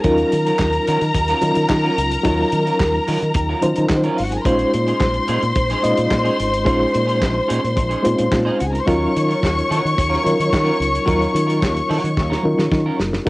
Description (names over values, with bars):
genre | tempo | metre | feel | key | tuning
disco | 109 BPM | 4/4 | straight | Bb minor | A4 = 438 Hz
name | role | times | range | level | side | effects
dark studio string section | second line | 0.0-12.9 s | C4 to Db6 | -21 LUFS | left 1 dB | cassette tape
clean electric guitar | accompaniment | 0.0-13.3 s | Gb3 to C5 | -27 LUFS | right 4 dB | tube saturation, cassette tape
reed electric piano | accompaniment | 0.0-13.3 s | Gb3 to Eb5 | -20 LUFS | equal | fast tremolo, cassette tape
fingered electric bass | bass | 0.0-13.3 s | Gb1 to Eb3 | -22 LUFS | equal | none
warm soul drum kit | drums | 0.0-13.3 s | handclaps, hi-hat, kick drum, snare drum | -23 LUFS | equal | none
room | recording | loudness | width
light reverb | home recording on cassette | -15 LUFS | side -20 dB against mid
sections
0.0-13.3 A section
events
drum fill 12.2-13.3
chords
0.0 Bbm11; 8.9 Ebm9